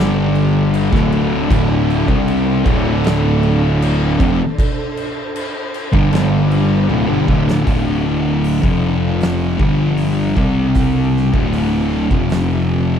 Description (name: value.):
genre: stoner and doom metal.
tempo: 78 BPM.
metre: 4/4.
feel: straight.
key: D minor.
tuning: A4 = 440 Hz.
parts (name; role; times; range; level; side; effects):
swarming drone; sustained chords; 0.0-13.0 s; G3 to D5; -28 LUFS; right 1 dB; none.
distorted electric guitar; riff; 0.0-7.7 s; D2 to C4; -21 LUFS; equal; distortion.
thick fuzz guitar; riff; 0.0-13.0 s; D2 to C4; -18 LUFS; left 8 dB; distortion.
thick fuzz guitar; riff; 0.0-13.0 s; D2 to C4; -20 LUFS; right 9 dB; distortion.
fuzz picked electric bass; bass; 0.0-13.0 s; D1 to C2; -20 LUFS; equal; overdrive.
oversized low-tuned drum kit; drums; 0.0-12.5 s; crash cymbal, hi-hat, kick drum, snare drum, toms; -21 LUFS; equal; none.
room: little or no reverb.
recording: none.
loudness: -13 LUFS.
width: side -8 dB against mid.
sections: 0.0-7.7 A section; 7.7-13.0 B section.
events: drum fill 6.9-7.7.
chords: 0.0 G5; 0.9 Dm; 6.1 G5; 6.9 D5; 8.6 F5; 9.6 G5; 10.4 C5; 11.3 D5; 12.1 F5.